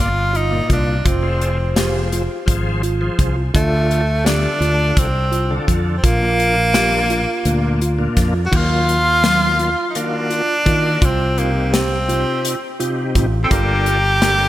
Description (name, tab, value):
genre	progressive instrumental, band music in an uneven meter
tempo	169 BPM (eighths)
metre	7/8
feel	straight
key	Bb major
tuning	A4 = 440 Hz
part	bright tenor saxophone	melody	0.0-14.5 s	A3 to A4	-19 LUFS	equal	none
part	bright tonewheel organ	accompaniment	0.0-14.5 s	Bb2 to D5	-24 LUFS	left 2 dB	chorus vibrato, slow rotary speaker
part	mellow tine electric piano	arpeggios	0.0-14.5 s	Gb3 to G4	-26 LUFS	right 3 dB	medium stereo tremolo
part	mellow fretless electric bass	bass	0.0-14.5 s	F1 to Eb3	-19 LUFS	equal	none
part	modern studio drum kit	drums	0.3-14.4 s	crash cymbal, hi-hat, kick drum, snare drum	-20 LUFS	equal	gated reverb
part	semi-hollow electric guitar	second line	13.4-14.5 s	Bb3 to C4	-24 LUFS	right 1 dB	tremolo
room	moderate lush hall reverb, RT60 2.7 s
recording	bright 1980s-style digital production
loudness	-15 LUFS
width	side -14 dB against mid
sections	0.0-8.5 A section; 8.5-14.5 B section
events	none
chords	0.0 Bb; 1.1 Fm; 3.5 Dm; 6.0 Bb; 8.5 Ebmadd9; 11.0 Cm; 13.5 Gmadd9